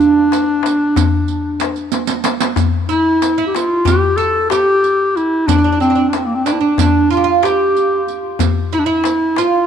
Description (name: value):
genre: Turkish makam ensemble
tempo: 186 BPM (eighths)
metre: 9/8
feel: straight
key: D makam ussak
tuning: A4 = 440 Hz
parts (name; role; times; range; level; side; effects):
- mellow clarinet; melody; 0.0-9.7 s; Bb3 to A4; -15 LUFS; left 1 dB; none
- oud; second line; 0.0-9.7 s; D4 to A4; -19 LUFS; right 9 dB; none
- riq; percussion; 0.0-9.5 s; none; -23 LUFS; right 13 dB; none
- darbuka; percussion; 0.3-9.5 s; none; -19 LUFS; left 5 dB; none
room: moderate plate reverb, RT60 3.4 s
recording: 1960s-style stereo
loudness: -12 LUFS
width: side -8 dB against mid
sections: 0.0-2.6 A section; 2.6-9.7 B section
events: drum fill 1.9-2.6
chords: none